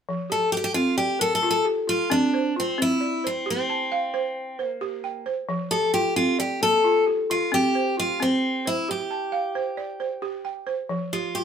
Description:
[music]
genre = west african traditional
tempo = 89 BPM (dotted quarters)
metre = 12/8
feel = straight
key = F major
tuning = A4 = 440 Hz
[part]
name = balafon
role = arpeggios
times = 0.1-11.4 s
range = F3 to A5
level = -26 LUFS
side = right 2 dB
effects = none
[part]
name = picked steel-string acoustic guitar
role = melody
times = 0.3-11.4 s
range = C4 to A4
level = -23 LUFS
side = left 1 dB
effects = none
[sound]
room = moderate studio reverb, RT60 0.8 s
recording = band playing live in one room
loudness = -22 LUFS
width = side -7 dB against mid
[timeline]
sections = 0.1-11.4 A section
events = none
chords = 0.1 F5; 2.8 C5; 5.5 F; 8.2 C5; 10.9 F5

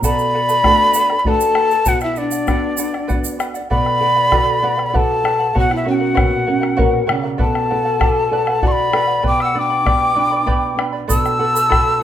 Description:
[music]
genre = andean folk, Andean ensemble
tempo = 98 BPM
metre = 3/4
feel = straight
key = unclear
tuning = A4 = 440 Hz
[part]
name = charango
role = accompaniment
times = 0.0-12.0 s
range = F#4 to B5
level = -24 LUFS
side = right 3 dB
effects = none
[part]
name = nylon-string guitar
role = accompaniment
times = 0.0-12.0 s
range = A#2 to D5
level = -23 LUFS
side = right 3 dB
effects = none
[part]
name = bombo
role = percussion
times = 0.0-11.9 s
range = none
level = -20 LUFS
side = left 1 dB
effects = none
[part]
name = egg shaker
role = percussion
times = 0.0-3.6, 11.1-11.7 s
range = none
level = -27 LUFS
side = right 8 dB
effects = none
[part]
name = breathy bright quena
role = melody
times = 0.1-12.0 s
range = D5 to E6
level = -17 LUFS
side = equal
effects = none
[part]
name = breathy pan flute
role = second line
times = 0.1-12.0 s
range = D4 to A5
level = -22 LUFS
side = left 5 dB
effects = none
[sound]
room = light reverb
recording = minimal, uncompressed stereo recording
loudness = -14 LUFS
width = side -11 dB against mid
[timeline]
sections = 0.0-3.7 A section; 3.7-12.0 A section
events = nylon-string guitar fill 6.5-7.4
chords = 0.0 D/B; 1.9 Bm; 3.7 D/B; 5.5 F#; 7.4 D/B; 9.2 G/B; 11.1 D/B

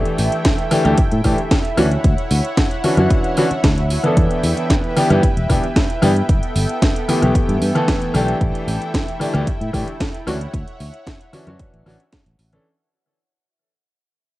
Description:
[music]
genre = nu-disco, nu disco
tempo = 113 BPM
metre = 4/4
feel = straight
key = unclear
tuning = A4 = 437 Hz
[part]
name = clear grand piano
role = accompaniment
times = 0.0-12.7 s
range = E3 to A4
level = -19 LUFS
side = equal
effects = sidechain pumping, cassette tape, tape echo
[part]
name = lush unison pad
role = sustained chords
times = 0.0-12.6 s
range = B3 to G5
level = -25 LUFS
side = equal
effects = chorus, sidechain pumping, cassette tape
[part]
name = house drum kit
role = drums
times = 0.1-12.6 s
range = hi-hat, snare drum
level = -23 LUFS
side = equal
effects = small room ambience, cassette tape
[part]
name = fingered electric bass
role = bass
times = 0.2-12.6 s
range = E1 to A2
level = -19 LUFS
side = equal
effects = none
[part]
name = electronic kick drum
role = drums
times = 0.5-12.2 s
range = none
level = -18 LUFS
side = equal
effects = small room ambience, cassette tape
[sound]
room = light reverb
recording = home recording on cassette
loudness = -15 LUFS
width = side -17 dB against mid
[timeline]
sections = 0.0-12.7 A section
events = drop 0.0-12.7; fade-out 7.0-12.7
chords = 0.0 A7sus4; 1.8 Dmaj9; 4.2 Em7; 6.3 G69; 8.4 A7sus4; 10.3 Dmaj9

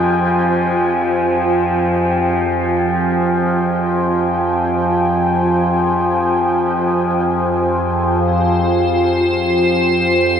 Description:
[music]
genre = dark ambient drone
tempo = free time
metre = none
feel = none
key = unclear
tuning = A4 = 441 Hz
[part]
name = dark analog pad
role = sustained chords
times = 0.0-10.4 s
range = F4 to Ab5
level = -17 LUFS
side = left 1 dB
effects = chorus
[part]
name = tubular bells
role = arpeggios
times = 0.0-10.4 s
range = none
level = barely audible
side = none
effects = none
[part]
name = overtone-sweeping drone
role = drone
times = 0.0-10.4 s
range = F2 to F3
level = -17 LUFS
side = right 1 dB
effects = chorus, built-in reverb
[part]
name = icy glass pad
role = texture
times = 8.6-10.4 s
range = C5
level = -18 LUFS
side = equal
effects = chorus, built-in reverb
[sound]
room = wet huge ambient reverb, RT60 7.9 s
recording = dark, warm production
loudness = -14 LUFS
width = side -8 dB against mid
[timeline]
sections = 0.0-8.2 A section; 8.2-10.4 B section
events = none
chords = 0.0 Fmadd9

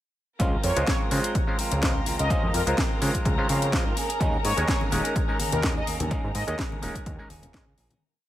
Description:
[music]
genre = filtered disco house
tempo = 126 BPM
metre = 4/4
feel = swing 54% on 16ths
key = Db major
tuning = A4 = 441 Hz
[part]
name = overdriven clav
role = accompaniment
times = 0.4-7.6 s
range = Ab3 to C5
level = -32 LUFS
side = equal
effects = phaser, sidechain pumping
[part]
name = dark studio string section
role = sustained chords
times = 0.4-8.0 s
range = Bb4 to Bb5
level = -34 LUFS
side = left 2 dB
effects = sidechain pumping
[part]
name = semi-hollow electric guitar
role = riff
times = 0.4-8.0 s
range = F3 to Ab4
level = -34 LUFS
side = right 4 dB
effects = sidechain pumping
[part]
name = fat analog bass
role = bass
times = 0.4-7.9 s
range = Eb1 to Db3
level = -28 LUFS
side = equal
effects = sidechain pumping
[part]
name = electronic kick drum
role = drums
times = 0.4-7.6 s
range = none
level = -28 LUFS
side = equal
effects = studio reverb
[part]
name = house drum kit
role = drums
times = 0.4-8.0 s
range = hi-hat, snare drum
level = -30 LUFS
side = left 1 dB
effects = overdrive, sidechain pumping on hats, studio reverb
[part]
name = analog synth brass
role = melody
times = 0.6-6.5 s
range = Bb4 to Eb5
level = -32 LUFS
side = equal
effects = chorus, cassette tape, sidechain pumping, dub echo
[part]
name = tube shaker and congas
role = percussion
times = 4.2-8.0 s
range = none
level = -37 LUFS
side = left 4 dB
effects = sidechain pumping on perc
[sound]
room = light reverb, digital ambience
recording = none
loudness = -22 LUFS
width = side -13 dB against mid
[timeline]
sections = 0.4-8.0 drop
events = drop 0.4-8.0; fade-out 5.5-8.0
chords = 0.4 Dbmaj7; 4.0 Eb7sus4

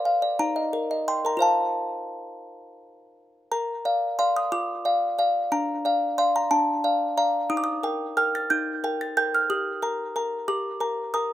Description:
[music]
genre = classical, lullaby for music box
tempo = 60 BPM (dotted quarters)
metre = 6/8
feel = straight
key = Bb major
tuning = A4 = 441 Hz
[part]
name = music box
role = solo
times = 0.0-11.3 s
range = D4 to A6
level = -22 LUFS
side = equal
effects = slapback echo
[sound]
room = little or no reverb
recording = recorded outdoors, with no room sound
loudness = -22 LUFS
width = side -13 dB against mid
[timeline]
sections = 0.0-3.5 A section; 3.5-11.3 B section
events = none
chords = 0.4 Eb; 1.4 F; 3.5 Bb; 5.5 Bb/D; 7.5 Eb; 9.5 Eb/G

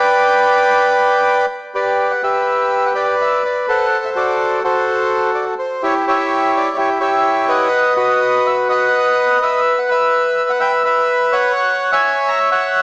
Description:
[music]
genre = tango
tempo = 125 BPM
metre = 4/4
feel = rubato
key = E minor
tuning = A4 = 440 Hz
[part]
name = bandoneon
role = solo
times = 0.0-12.8 s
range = E4 to A#5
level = -13 LUFS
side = equal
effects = none
[sound]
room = moderate scoring stage reverb, RT60 1.9 s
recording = small speaker sound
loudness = -13 LUFS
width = side -25 dB against mid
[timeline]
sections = 0.0-2.0 A section; 2.0-12.8 B section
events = none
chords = 0.1 G; 2.0 Em7; 3.9 F#dim; 5.8 Em13; 7.7 B; 9.6 Bsus4; 11.6 F#5

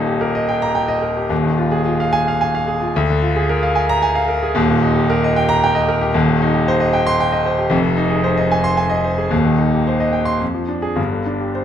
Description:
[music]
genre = classical, virtuoso piano study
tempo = 111 BPM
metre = 3/4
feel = rubato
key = Eb major, C minor from 6.1 s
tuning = A4 = 440 Hz
[part]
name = clear grand piano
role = solo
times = 0.0-11.6 s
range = Eb1 to C6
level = -15 LUFS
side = equal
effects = none
[sound]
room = moderate recital hall reverb, RT60 1.5 s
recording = close, detailed microphones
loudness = -15 LUFS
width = side -9 dB against mid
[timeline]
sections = 0.0-11.6 A section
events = none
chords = 0.0 Eb; 1.3 Fm7/Eb; 2.9 Bb7/D; 4.5 Eb; 6.1 Cm/Eb; 7.7 Fm7; 9.3 Cm/Eb; 10.4 Ddim/F; 11.0 Gsus4

